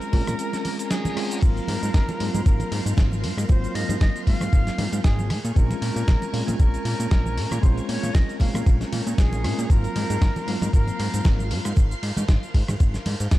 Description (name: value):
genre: nu-disco, nu disco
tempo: 116 BPM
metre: 4/4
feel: swing 55% on 16ths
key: Ab mixolydian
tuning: A4 = 437 Hz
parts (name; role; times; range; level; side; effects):
- breathy mellow jazz flute; melody; 0.0-11.7 s; Ab4 to F5; -33 LUFS; equal; tape echo
- mellow tine electric piano; accompaniment; 0.0-11.7 s; Gb3 to F4; -30 LUFS; equal; medium stereo tremolo, sidechain pumping
- string machine, full ensemble; sustained chords; 0.0-13.4 s; Bb4 to Db6; -37 LUFS; equal; ensemble chorus, sidechain pumping
- dusty soul sampler-style drum kit; drums; 0.0-13.4 s; crash cymbal, hi-hat, ride cymbal, rim click, shaker, snare drum; -32 LUFS; equal; none
- fat analog bass; bass; 0.1-13.4 s; Ab1 to Bb2; -26 LUFS; equal; sidechain pumping
- electronic kick drum; drums; 0.1-13.4 s; none; -18 LUFS; equal; none
- congas; percussion; 0.1-13.2 s; none; -31 LUFS; right 2 dB; none
- reverse cymbal; sound effects; 0.7-1.4 s; none; -38 LUFS; left 2 dB; none
room: little or no reverb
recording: dark, warm production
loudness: -20 LUFS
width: side -16 dB against mid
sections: 0.0-13.4 A section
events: break 0.4-1.4; reverse cymbal 0.7-1.4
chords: 0.0 Bbm7; 1.4 Ab13; 5.3 Bbm7; 9.7 Ab13